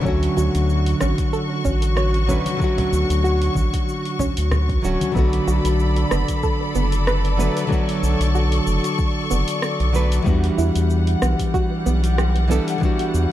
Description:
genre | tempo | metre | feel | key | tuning
sunset chillout | 94 BPM | 4/4 | swing 55% on 16ths | unclear | A4 = 440 Hz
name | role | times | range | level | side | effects
nylon-string guitar | accompaniment | 0.0-13.3 s | D3 to B4 | -23 LUFS | equal | auto-pan, digital delay
clear symphonic string section | sustained chords | 0.0-13.3 s | G3 to C#6 | -27 LUFS | left 2 dB | none
soft round pluck | arpeggios | 0.1-12.8 s | B3 to C#5 | -29 LUFS | right 3 dB | chorus, digital delay
round analog bass | bass | 0.1-13.3 s | D1 to E2 | -19 LUFS | equal | none
electronic kick drum | drums | 0.1-13.0 s | none | -23 LUFS | equal | overdrive
smooth R&B drum kit | drums | 0.1-13.3 s | cabasa, hi-hat, rim click | -31 LUFS | equal | overdrive
congas | percussion | 0.4-5.1 s | none | -28 LUFS | left 1 dB | none
room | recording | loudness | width
light reverb | dark, warm production | -17 LUFS | side -13 dB against mid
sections
0.0-5.2 A section; 5.2-13.3 B section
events
none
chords
0.0 Dmaj7; 5.2 Bm7; 10.3 Em9

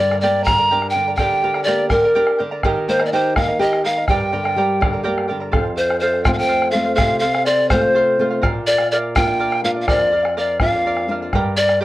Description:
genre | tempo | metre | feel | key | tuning
andean folk, Andean ensemble | 83 BPM (dotted quarters) | 6/8 | straight | unclear | A4 = 439 Hz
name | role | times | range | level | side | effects
bright polished pan flute | melody | 0.0-11.8 s | Bb4 to Bb5 | -17 LUFS | equal | none
charango | accompaniment | 0.0-11.8 s | G4 to Bb5 | -23 LUFS | right 3 dB | none
nylon-string guitar | accompaniment | 0.0-11.8 s | F2 to G4 | -23 LUFS | left 2 dB | none
bombo | percussion | 0.1-11.8 s | none | -21 LUFS | equal | none
room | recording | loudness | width
moderate small room reverb, RT60 0.5 s | worn, warbling old tape, cassette tape, warbly pitch drift | -15 LUFS | side -16 dB against mid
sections
0.0-5.5 A section; 5.5-11.8 A section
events
none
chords
0.0 Gm; 2.6 Eb; 4.1 Gm; 5.5 F; 8.4 Bb; 11.3 Gm

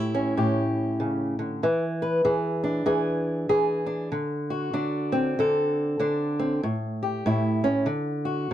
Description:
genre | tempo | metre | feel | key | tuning
blues | 96 BPM | 4/4 | swing 61% on 8ths | A mixolydian | A4 = 440 Hz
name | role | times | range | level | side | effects
fingerpicked old ladder-braced acoustic guitar | solo | 0.0-8.5 s | A2 to B4 | -23 LUFS | equal | none
room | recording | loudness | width
light reverb | close, detailed microphones | -23 LUFS | side -11 dB against mid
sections
0.0-8.5 A section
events
none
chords
0.0 A7; 1.6 E7; 4.1 D7; 6.6 A7; 7.9 D

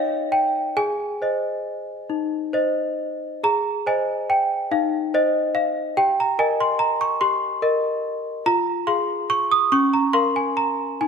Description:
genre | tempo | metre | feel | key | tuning
classical, lullaby for celesta | 44-49 BPM (dotted quarters) | 6/8 | rubato | Ab major | A4 = 439 Hz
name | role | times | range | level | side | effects
worn celesta | solo | 0.0-11.1 s | Db4 to Eb6 | -19 LUFS | equal | none
room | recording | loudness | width
moderate scoring stage reverb, RT60 1.7 s | none | -19 LUFS | side -6 dB against mid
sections
0.0-3.4 A section; 3.4-11.1 B section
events
none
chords
0.0 Eb9; 0.8 Ab; 6.0 Eb/G; 8.5 Fm; 9.7 Bbm/Db

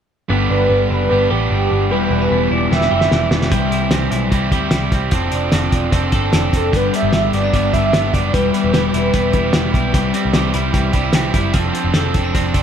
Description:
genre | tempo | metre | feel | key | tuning
jangly indie pop | 149 BPM | 4/4 | straight | G major | A4 = 441 Hz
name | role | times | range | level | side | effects
cranked stack guitar | accompaniment | 0.3-12.6 s | E2 to A4 | -21 LUFS | right 5 dB | overdrive
twelve-string electric guitar | arpeggios | 0.3-12.6 s | F3 to A4 | -21 LUFS | left 5 dB | digital delay
vintage muted picked electric bass | bass | 0.3-12.6 s | E1 to D2 | -20 LUFS | equal | none
warm velvety synth lead | melody | 0.5-3.3, 6.6-9.7 s | G4 to E5 | -20 LUFS | right 2 dB | chorus, digital delay
cloth-damped thuddy drum kit | drums | 2.7-12.6 s | hi-hat, kick drum, snare drum | -19 LUFS | equal | none
room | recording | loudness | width
moderate studio reverb, RT60 0.9 s | none | -14 LUFS | side -8 dB against mid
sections
0.3-6.7 A section; 6.7-12.6 B section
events
drum fill 2.7-3.5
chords
0.3 G; 1.9 Em; 3.5 C; 5.1 F6; 6.7 G; 8.3 Em; 9.9 C; 11.5 F6

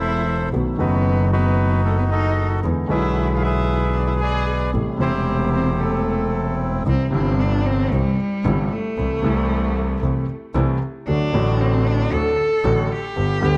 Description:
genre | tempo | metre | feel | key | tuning
tango | 114 BPM | 4/4 | rubato | C major from 6.9 s | A4 = 445 Hz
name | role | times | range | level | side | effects
bandoneon | melody | 0.0-6.8 s | C4 to G#5 | -27 LUFS | equal | none
rich cello | second line | 0.0-13.6 s | G3 to A4 | -27 LUFS | equal | tape echo
warm concert grand piano | accompaniment | 0.0-13.6 s | E1 to A4 | -25 LUFS | equal | none
bright double bass | bass | 0.0-13.6 s | E1 to E2 | -24 LUFS | equal | none
room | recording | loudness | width
moderate spring reverb, RT60 2.3 s | dark, warm production | -20 LUFS | mono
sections
0.0-6.9 A section; 6.9-13.6 B section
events
cello solo 6.9-13.6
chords
0.0 Am; 0.5 B7; 2.6 E7; 4.7 Am7; 6.9 C; 9.0 Am/C; 11.1 D

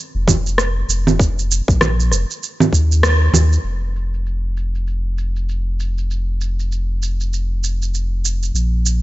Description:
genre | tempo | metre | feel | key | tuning
organic downtempo | 98 BPM | 4/4 | swing 59% on 16ths | unclear | A4 = 440 Hz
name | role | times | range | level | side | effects
warm sub bass | bass | 0.1-9.0 s | F1 to Eb2 | -18 LUFS | equal | sidechain pumping
electronic congas, shaker and rim click | drums | 0.3-9.0 s | none | -18 LUFS | right 2 dB | low-pass filter on perc, low-pass filter on snare, low-pass filter on room
electronic kick drum | drums | 0.3-2.9 s | none | -16 LUFS | equal | none
room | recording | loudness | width
little or no reverb | dry, gritty hardware recording, nothing above 7.8 kHz | -16 LUFS | side -17 dB against mid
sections
0.0-3.6 A section; 3.6-9.0 B section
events
band accent 3.0-3.3; filter sweep on drum 3.6-9.0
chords
none

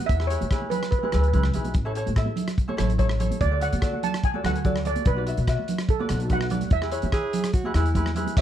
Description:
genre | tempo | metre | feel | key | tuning
calypso | 145 BPM | 4/4 | straight | unclear | A4 = 435 Hz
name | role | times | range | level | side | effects
steel pan | melody | 0.0-8.4 s | A4 to A5 | -29 LUFS | right 3 dB | tape echo
ukulele | accompaniment | 0.0-8.4 s | E4 to E5 | -32 LUFS | left 2 dB | none
upright bass | bass | 0.1-8.4 s | A1 to E3 | -25 LUFS | equal | none
warm soul drum kit | drums | 0.1-8.4 s | crash cymbal, hi-hat, kick drum, rim click | -26 LUFS | equal | none
congas | percussion | 0.4-8.4 s | none | -30 LUFS | right 4 dB | none
breathy alto saxophone | second line | 7.1-8.3 s | E4 to G#4 | -30 LUFS | right 2 dB | none
room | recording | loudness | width
light reverb | dark, warm production | -22 LUFS | side -11 dB against mid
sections
0.0-8.4 A section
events
steel pan solo 0.0-8.4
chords
0.1 E; 1.7 A; 3.4 D; 5.1 Bm7; 6.7 E

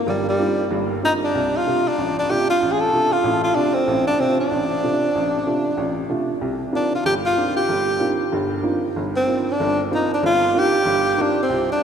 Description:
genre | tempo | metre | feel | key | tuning
jazz | 189 BPM | 4/4 | swing 63% on 8ths | C dorian | A4 = 440 Hz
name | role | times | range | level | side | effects
warm tenor saxophone | melody | 0.1-11.8 s | F#3 to A4 | -19 LUFS | equal | none
warm upright piano | accompaniment | 0.1-11.8 s | G1 to F4 | -23 LUFS | right 1 dB | none
room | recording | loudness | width
wet cathedral reverb, RT60 5.1 s | recorded in a church or concert hall | -18 LUFS | side -8 dB against mid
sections
0.0-11.8 A section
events
none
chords
0.0 Cm11; 1.3 Dm; 6.4 Cm11

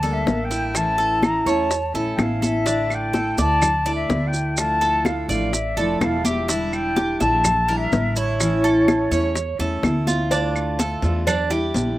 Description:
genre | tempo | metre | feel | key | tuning
latin, Cuban son and guajira | 126 BPM | 4/4 | straight | unclear | A4 = 439 Hz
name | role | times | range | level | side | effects
mellow concert flute | melody | 0.0-9.8 s | C#5 to Bb5 | -23 LUFS | left 1 dB | none
picked steel-string acoustic guitar | accompaniment | 0.0-12.0 s | D3 to A4 | -24 LUFS | left 1 dB | none
Cuban tres | arpeggios | 0.0-12.0 s | D4 to E5 | -27 LUFS | right 4 dB | slapback echo
upright bass | bass | 0.0-12.0 s | E1 to E2 | -26 LUFS | equal | none
congas | percussion | 0.0-12.0 s | none | -25 LUFS | left 1 dB | none
maracas | percussion | 0.0-12.0 s | none | -30 LUFS | right 4 dB | none
bongos and cowbell | percussion | 0.3-12.0 s | none | -27 LUFS | left 4 dB | none
claves | percussion | 0.8-11.5 s | none | -32 LUFS | right 2 dB | none
room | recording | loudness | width
little or no reverb | recorded outdoors, with no room sound | -18 LUFS | side -16 dB against mid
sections
0.0-10.3 A section; 10.3-12.0 B section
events
none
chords
0.0 Gmadd9; 0.8 A; 2.7 Asus4; 4.6 Dmadd9; 6.5 Em7b5; 8.4 A; 10.3 Dm; 11.3 Em7b5

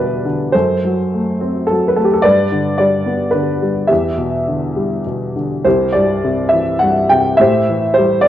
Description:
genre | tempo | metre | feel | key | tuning
classical, lyrical solo piano | 99-110 BPM | 3/4 | rubato | unclear | A4 = 440 Hz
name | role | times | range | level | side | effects
dark baby grand piano | solo | 0.0-8.3 s | C2 to G5 | -13 LUFS | equal | none
room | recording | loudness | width
moderate recital hall reverb, RT60 1.6 s | worn, warbling old tape, cassette tape, warbly pitch drift | -13 LUFS | side -12 dB against mid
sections
0.0-5.7 A section; 5.7-8.3 B section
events
none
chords
0.0 Em7; 0.5 F#dim; 2.2 G; 3.9 Em7; 5.7 C; 7.4 Am7

